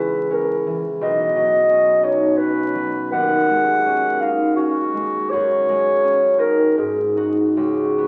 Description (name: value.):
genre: classical, impressionist duo for clarinet and harp.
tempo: 82 BPM.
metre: 3/4.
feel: uneven beats, rubato.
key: C# dorian.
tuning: A4 = 441 Hz.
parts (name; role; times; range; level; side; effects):
dark clarinet; melody; 0.0-8.1 s; F#4 to F#5; -20 LUFS; equal; none.
concert harp; accompaniment; 0.0-8.1 s; B1 to F#4; -23 LUFS; equal; none.
room: wet recital hall reverb, RT60 1.5 s.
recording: very old 78 rpm record, vinyl crackle.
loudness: -18 LUFS.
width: mono.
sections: 0.0-8.1 A section.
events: none.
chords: 0.0 C#m7; 1.0 Badd9; 3.1 D#m7; 5.3 F#sus2; 6.8 G#7sus4; 7.6 C#9sus4.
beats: 0.31 | 1.01 1.69 2.37 | 3.13 3.85 4.57 | 5.31 6.03 6.77 | 7.56.